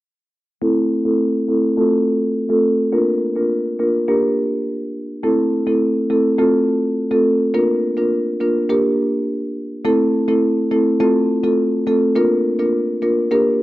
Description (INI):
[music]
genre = dancehall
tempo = 104 BPM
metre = 4/4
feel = straight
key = unclear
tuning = A4 = 442 Hz
[part]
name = marimba with soft mallets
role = accompaniment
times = 0.6-13.4 s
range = A3 to Bb4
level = -15 LUFS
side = equal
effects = low-pass filter, cassette tape
[sound]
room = light reverb, small room ambience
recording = home recording on cassette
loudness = -15 LUFS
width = side -17 dB against mid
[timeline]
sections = 0.6-9.8 A section; 9.8-13.6 B section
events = filter sweep on marimba 0.6-9.8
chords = 0.6 Am; 1.8 F; 2.9 Bb; 4.1 Gm; 5.2 Am; 6.4 F; 7.5 Bb; 8.7 Gm; 9.8 Am; 11.0 F; 12.2 Bb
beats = | 0.62 1.20 1.77 2.35 | 2.93 3.50 4.08 4.66 | 5.24 5.81 6.39 6.97 | 7.54 8.12 8.70 9.27 | 9.85 10.43 11.00 11.58 | 12.16 12.73 13.31